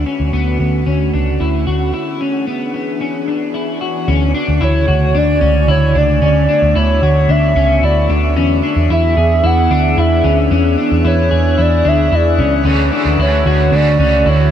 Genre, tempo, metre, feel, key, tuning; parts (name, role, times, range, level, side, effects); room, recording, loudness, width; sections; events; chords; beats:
dream pop; 112 BPM; 4/4; straight; A4 = 441 Hz
warbly tape-like pad; sustained chords; 0.0-14.5 s; C#3 to G#4; -19 LUFS; right 2 dB; chorus, built-in reverb, phaser, low-pass filter
electric guitar at the edge of break-up; arpeggios; 0.0-14.5 s; B3 to G#4; -18 LUFS; left 4 dB; lush chorus, low-pass filter, tape echo
vintage muted picked electric bass; bass; 0.0-14.5 s; C#2 to E2; -14 LUFS; equal
drifting glass-harmonics texture; texture; 5.0-14.5 s; F#4 to G#5; -27 LUFS; left 1 dB; chorus, built-in reverb, tape echo
hollow clarinet-like synth lead; melody; 4.6-14.5 s; C#5 to F#5; -16 LUFS; right 1 dB; chorus, tape echo
crunchy overdriven guitar; accompaniment; 12.6-14.5 s; D3 to F#4; -20 LUFS; right 5 dB; harmonic tremolo, analog chorus
moderate shimmer reverb, RT60 6.4 s; dark, warm production; -11 LUFS; side -9 dB against mid
0.0-4.1 A section; 4.1-14.5 B section
break 1.9-4.1
0.0 Dmaj7; 1.9 E7; 4.1 Dmaj7; 8.4 E7; 12.7 Dmaj7
0.33 0.87 1.41 | 1.94 2.48 3.01 3.55 | 4.08 4.62 5.16 5.69 | 6.23 6.76 7.30 7.83 | 8.37 8.91 9.44 9.98 | 10.51 11.05 11.58 12.12 | 12.66 13.19 13.73 14.26